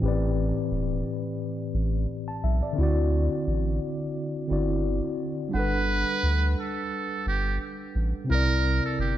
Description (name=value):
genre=lo-fi hip hop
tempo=87 BPM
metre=4/4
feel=swing 56% on 16ths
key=G major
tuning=A4 = 441 Hz
part: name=mellow tine electric piano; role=accompaniment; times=0.0-9.2 s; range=A2 to A5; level=-28 LUFS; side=left 2 dB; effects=medium stereo tremolo, cassette tape, low-pass filter
part: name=soft dub sub bass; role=bass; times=0.0-9.2 s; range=E1 to D2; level=-26 LUFS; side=equal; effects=none
part: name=trumpet with metal mute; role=melody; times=5.6-9.2 s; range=G4 to B4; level=-28 LUFS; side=right 4 dB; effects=low-pass filter
room=moderate scoring stage reverb, RT60 2.2 s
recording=cassette tape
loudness=-24 LUFS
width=side -12 dB against mid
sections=0.0-5.5 A section; 5.5-9.2 B section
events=none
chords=0.0 Am11; 2.8 D7; 5.5 Gmaj7; 8.3 C7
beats=| 0.02 0.71 1.40 2.09 | 2.78 3.47 4.16 4.84 | 5.54 6.22 6.91 7.60 | 8.29 8.98